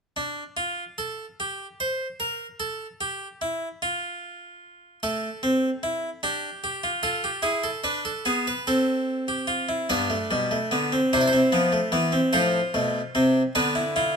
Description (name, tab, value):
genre	classical, baroque-style 4-part fugue for harpsichord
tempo	49 BPM (dotted quarters)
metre	6/8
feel	straight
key	unclear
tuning	A4 = 440 Hz
part	harpsichord	solo	0.2-14.2 s	G2 to D5	-23 LUFS	equal	none
room	moderate stone room reverb, RT60 1.3 s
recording	close, detailed microphones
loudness	-23 LUFS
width	side -6 dB against mid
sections	0.2-9.9 A section; 9.9-14.2 B section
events	none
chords	0.2 N.C.; 5.0 Am; 6.2 Dmadd11; 7.4 E7; 8.7 Am/C; 9.9 G; 11.1 Cmaj7; 12.3 F/A; 13.6 Bdim/D